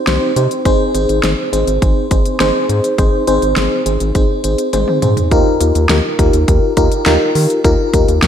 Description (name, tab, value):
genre	synth-pop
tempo	103 BPM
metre	4/4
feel	straight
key	Eb major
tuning	A4 = 438 Hz
part	FM electric piano with tremolo	accompaniment	0.0-8.3 s	C4 to C5	-14 LUFS	left 1 dB	phaser, slapback echo
part	round analog bass	bass	0.1-8.3 s	Ab1 to Eb3	-17 LUFS	equal	none
part	pop drum kit	drums	0.1-8.3 s	handclaps, hi-hat, kick drum, snare drum, toms	-16 LUFS	equal	overdrive
room	wet recital hall reverb, RT60 1.7 s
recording	big arena sound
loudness	-11 LUFS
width	side -9 dB against mid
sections	0.0-5.3 A section; 5.3-8.3 B section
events	drum fill 4.7-5.3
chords	0.0 Cm; 0.7 Ab; 5.3 Ebadd9